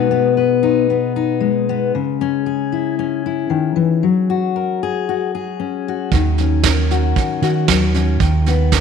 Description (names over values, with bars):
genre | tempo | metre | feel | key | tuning
acoustic folk duo or small band | 115 BPM | 4/4 | straight | unclear | A4 = 440 Hz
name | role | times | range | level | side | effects
fingerpicked steel-string acoustic guitar | accompaniment | 0.0-8.8 s | B2 to B4 | -17 LUFS | left 7 dB | none
fingered electric bass | bass | 6.1-8.8 s | D#2 to D#3 | -16 LUFS | right 3 dB | none
soft brush drum kit | drums | 6.1-8.8 s | kick drum, snare drum | -19 LUFS | right 6 dB | none
room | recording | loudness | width
moderate echo chamber reverb, RT60 1.9 s, small room ambience | 1960s-style stereo with parts hard left and right | -15 LUFS | side -6 dB against mid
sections
0.0-8.8 A section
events
none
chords
0.0 G#m/B; 1.9 C#m; 4.0 F#add9; 6.1 D#m7; 8.2 G#m/D# (rootless)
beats
0.37 0.89 1.42 | 1.94 2.46 2.98 3.50 | 4.03 4.55 5.07 5.59 | 6.11 6.63 7.16 7.68 | 8.20 8.72